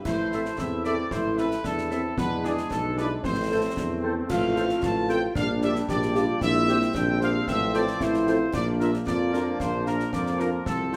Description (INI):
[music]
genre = military-style march for wind band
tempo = 113 BPM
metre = 2/4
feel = straight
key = unclear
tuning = A4 = 441 Hz
[part]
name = bright trombone section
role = sustained chords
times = 0.0-11.0 s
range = F3 to E4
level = -36 LUFS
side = equal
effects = none
[part]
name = warm trumpet section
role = melody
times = 0.1-11.0 s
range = G#4 to A5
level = -33 LUFS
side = equal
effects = none
[part]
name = warm euphonium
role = second line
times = 0.1-11.0 s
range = B3 to G4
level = -32 LUFS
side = equal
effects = none
[part]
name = warm tuba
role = bass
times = 0.1-11.0 s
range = A1 to F2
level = -30 LUFS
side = equal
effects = none
[part]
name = concert snare drum, clash cymbals and concert bass drum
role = drums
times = 0.1-11.0 s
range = none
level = -37 LUFS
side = equal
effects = none
[part]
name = warm woodwind section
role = second line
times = 0.3-11.0 s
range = F4 to E5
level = -37 LUFS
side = equal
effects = none
[part]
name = warm French horn section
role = accompaniment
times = 0.3-11.0 s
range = G3 to A4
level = -35 LUFS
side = equal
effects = none
[sound]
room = wet large studio reverb, RT60 1.3 s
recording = none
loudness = -25 LUFS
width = mono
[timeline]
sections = 0.0-11.0 A section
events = none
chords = 0.1 Am; 2.2 E7; 3.2 Am; 4.3 F/A; 5.4 Gm/Bb; 6.4 C7/Bb; 7.5 F/A; 8.5 Bb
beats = | 0.06 0.59 | 1.12 1.65 | 2.18 2.71 | 3.24 3.77 | 4.30 4.83 | 5.36 5.89 | 6.42 6.95 | 7.48 8.01 | 8.54 9.07 | 9.60 10.13 | 10.66